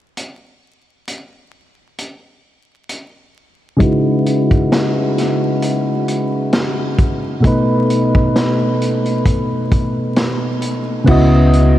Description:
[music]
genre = lo-fi hip hop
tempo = 66 BPM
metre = 4/4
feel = swing 56% on 16ths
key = C# minor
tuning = A4 = 441 Hz
[part]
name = vintage drum kit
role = drums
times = 0.2-11.8 s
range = crash cymbal, hi-hat, kick drum, snare drum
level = -18 LUFS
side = equal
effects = vintage 12-bit sampler grit
[part]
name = soft electric-piano-like synth keys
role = accompaniment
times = 3.8-11.8 s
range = B2 to D#5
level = -14 LUFS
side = equal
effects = chorus, low-pass filter
[part]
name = upright bass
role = bass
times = 11.1-11.8 s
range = C#2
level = -12 LUFS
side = equal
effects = none
[sound]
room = moderate huge ambient reverb, RT60 7.3 s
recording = dreamy mix soaked in reverb, vinyl crackle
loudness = -13 LUFS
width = side -13 dB against mid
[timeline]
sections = 0.2-3.8 A section; 3.8-11.1 B section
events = filter sweep on synth keys 3.8-11.1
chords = 0.2 N.C.; 3.8 C#m11; 7.4 B7; 11.1 C#m11

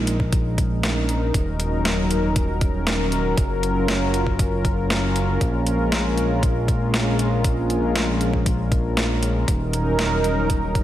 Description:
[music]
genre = synthwave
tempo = 118 BPM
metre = 4/4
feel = straight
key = Bb minor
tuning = A4 = 440 Hz
[part]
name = warm analog pad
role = sustained chords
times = 0.0-10.8 s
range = Gb3 to Bb4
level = -23 LUFS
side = equal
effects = chorus, sidechain pumping
[part]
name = fat analog bass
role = bass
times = 0.0-10.8 s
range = Eb1 to Bb1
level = -23 LUFS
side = equal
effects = tube saturation
[part]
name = clean 12-bit digital drum machine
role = drums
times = 0.1-10.8 s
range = hi-hat, snare drum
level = -26 LUFS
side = equal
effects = overdrive
[part]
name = electronic kick drum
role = drums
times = 0.2-10.8 s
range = none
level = -22 LUFS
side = equal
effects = overdrive
[sound]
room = light reverb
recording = none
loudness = -19 LUFS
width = side -12 dB against mid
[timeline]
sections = 0.0-10.8 A section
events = none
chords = 0.0 Bbm7; 1.3 Ebm7; 3.4 Gbmaj7; 5.4 Bbm7; 9.5 Ebm7

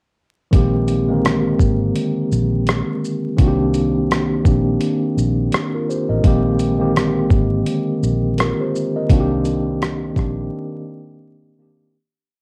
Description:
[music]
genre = lo-fi hip hop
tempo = 84 BPM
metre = 4/4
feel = swing 57% on 16ths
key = C minor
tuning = A4 = 440 Hz
[part]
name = mellow tine electric piano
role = accompaniment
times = 0.5-12.0 s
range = D3 to Eb5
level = -21 LUFS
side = equal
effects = cassette tape
[part]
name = vintage muted fingered electric bass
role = bass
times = 0.5-10.5 s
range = Ab1 to C2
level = -24 LUFS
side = equal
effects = none
[part]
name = dusty soul sampler-style drum kit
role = drums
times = 0.5-10.4 s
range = hi-hat, kick drum, rim click, shaker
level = -20 LUFS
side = equal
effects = cassette tape
[sound]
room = light reverb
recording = home recording on cassette, vinyl crackle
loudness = -18 LUFS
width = mono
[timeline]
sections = 0.5-12.0 A section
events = fade-out 9.1-12.0; break 10.5-12.0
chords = 0.5 Bb13sus4; 3.4 Cm9; 6.2 Bb13sus4; 9.1 Cm9

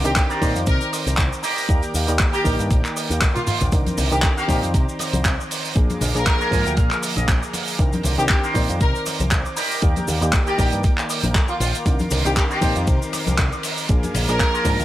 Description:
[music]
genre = nu-disco, nu disco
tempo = 118 BPM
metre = 4/4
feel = swing 55% on 16ths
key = C minor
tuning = A4 = 444 Hz
[part]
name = clear studio violin section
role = melody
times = 0.0-14.8 s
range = F4 to Bb4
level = -26 LUFS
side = equal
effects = tape echo
[part]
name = reed electric piano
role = accompaniment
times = 0.0-14.8 s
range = D3 to D5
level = -28 LUFS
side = equal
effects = sidechain pumping, tape echo
[part]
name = lush unison pad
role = sustained chords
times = 0.0-14.8 s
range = Ab4 to D6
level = -32 LUFS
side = equal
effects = chorus, sidechain pumping
[part]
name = electric guitar with an envelope filter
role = riff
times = 0.0-14.8 s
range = Eb4 to Ab5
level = -28 LUFS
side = right 1 dB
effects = wide subtle chorus
[part]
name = picked electric bass with an envelope filter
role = bass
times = 0.0-14.8 s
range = Bb1 to C3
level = -23 LUFS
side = equal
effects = none
[part]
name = damped 70s drum kit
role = drums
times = 0.0-14.8 s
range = cabasa, handclaps, hi-hat, ride cymbal, toms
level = -24 LUFS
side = right 1 dB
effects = small room ambience
[part]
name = electronic kick drum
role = drums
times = 0.2-14.8 s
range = none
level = -19 LUFS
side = equal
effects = overdrive, small room ambience
[part]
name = congas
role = percussion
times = 3.9-14.8 s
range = none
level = -29 LUFS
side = left 2 dB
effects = none
[sound]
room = small room ambience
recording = none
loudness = -17 LUFS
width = side -14 dB against mid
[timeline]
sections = 0.0-14.8 A section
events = drum fill 3.2-3.7; clean electric guitar fill 6.3-7.8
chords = 0.0 Cm9; 1.4 Ebmaj7; 3.7 Cm9; 5.8 Bb7; 7.8 Cm9; 9.6 Ebmaj7; 11.9 Cm9; 13.9 Bb7

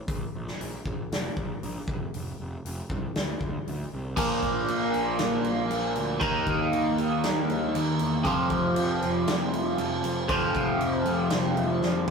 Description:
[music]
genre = quiet-loud alternative rock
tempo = 118 BPM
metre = 4/4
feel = straight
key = unclear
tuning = A4 = 440 Hz
[part]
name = fuzz picked electric bass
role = bass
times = 0.1-12.1 s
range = F1 to Bb2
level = -34 LUFS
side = equal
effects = overdrive
[part]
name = big rock drum kit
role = drums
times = 0.1-12.1 s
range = crash cymbal, hi-hat, kick drum, snare drum, toms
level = -31 LUFS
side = equal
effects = none
[part]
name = overdriven electric guitar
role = riff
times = 4.2-12.1 s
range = F2 to Eb4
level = -25 LUFS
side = equal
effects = phaser
[sound]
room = light reverb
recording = rough rehearsal-room recording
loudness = -25 LUFS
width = side -5 dB against mid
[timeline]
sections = 0.0-4.2 A section; 4.2-12.1 B section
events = drum fill 11.8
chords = 0.1 Bb5; 1.9 F5; 3.2 Csus2; 4.2 Bb5; 6.2 Eb5; 8.3 F5

